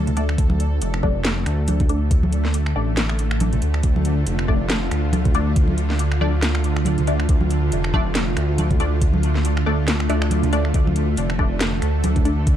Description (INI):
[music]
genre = deep dubstep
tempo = 139 BPM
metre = 4/4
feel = swing 57% on 16ths, half-time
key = D minor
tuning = A4 = 440 Hz
[part]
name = bowed-like drone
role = sustained chords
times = 0.0-12.6 s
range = D3 to A4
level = -26 LUFS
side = right 1 dB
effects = built-in reverb
[part]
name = dark detuned saw bass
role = bass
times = 0.0-12.6 s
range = F1 to D2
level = -20 LUFS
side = equal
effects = none
[part]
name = garage drum kit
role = drums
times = 0.1-12.6 s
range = finger snaps, hi-hat, snare drum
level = -26 LUFS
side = equal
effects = small room ambience
[part]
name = congas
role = percussion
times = 0.1-12.2 s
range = none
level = -26 LUFS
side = right 1 dB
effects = none
[part]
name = filtered dub chord stab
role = stabs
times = 0.2-12.3 s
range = A3 to D5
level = -28 LUFS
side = left 3 dB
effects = phaser, analog chorus, dub echo
[part]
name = electronic kick drum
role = drums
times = 0.4-12.6 s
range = none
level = -19 LUFS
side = equal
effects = small room ambience
[part]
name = swell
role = sound effects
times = 10.0-10.7 s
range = none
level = -30 LUFS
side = right 4 dB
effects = none
[sound]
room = light reverb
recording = dark, warm production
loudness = -17 LUFS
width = side -10 dB against mid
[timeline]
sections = 0.0-12.6 A section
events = swell 10.0-10.7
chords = 0.0 D5